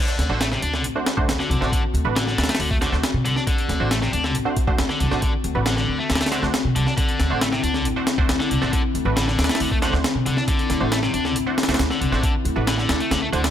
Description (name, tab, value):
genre	breakbeat, breaks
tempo	137 BPM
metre	4/4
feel	straight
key	unclear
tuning	A4 = 440 Hz
part	warbly tape-like pad	sustained chords	0.3-13.5 s	D3 to F#4	-27 LUFS	left 4 dB	chorus, built-in reverb, sidechain pumping
part	tight distorted guitar	riff	0.0-13.4 s	C3 to D4	-26 LUFS	left 1 dB	distortion, tube saturation, vintage 12-bit sampler grit, ping-pong delay
part	breakbeat sampler-style drum kit	drums	0.1-13.5 s	hi-hat, kick drum, snare drum	-23 LUFS	equal	none
part	upright bass	bass	0.2-13.5 s	A1 to B2	-24 LUFS	equal	none
part	band-passed chord stab	stabs	0.3-13.4 s	A3 to C5	-28 LUFS	right 4 dB	chorus, ping-pong delay
room	little or no reverb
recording	none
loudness	-19 LUFS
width	side -10 dB against mid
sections	0.0-13.5 A section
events	kick drops out 13.1-13.5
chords	0.0 D7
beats	0.41 0.85 1.28 | 1.72 2.16 2.60 3.04 | 3.47 3.91 4.35 4.79 | 5.23 5.66 6.10 6.54 | 6.98 7.42 7.85 8.29 | 8.73 9.17 9.61 10.04 | 10.48 10.92 11.36 11.79 | 12.23 12.67 13.11